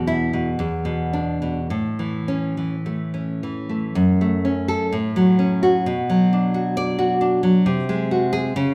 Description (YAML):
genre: romantic piece for solo classical guitar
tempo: 51-68 BPM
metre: 2/4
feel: rubato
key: A major, F# minor from 4.0 s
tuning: A4 = 439 Hz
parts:
  - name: nylon-string guitar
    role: solo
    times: 0.0-8.7 s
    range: E2 to D5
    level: -21 LUFS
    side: equal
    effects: none
room: wet recital hall reverb, RT60 1.6 s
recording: recorded in a church or concert hall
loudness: -21 LUFS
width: mono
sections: 0.0-4.0 A section; 4.0-8.7 B section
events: none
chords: 0.0 E5; 1.7 A; 4.0 F#m; 4.9 F#m/A; 5.9 Bm; 7.7 G#7/B#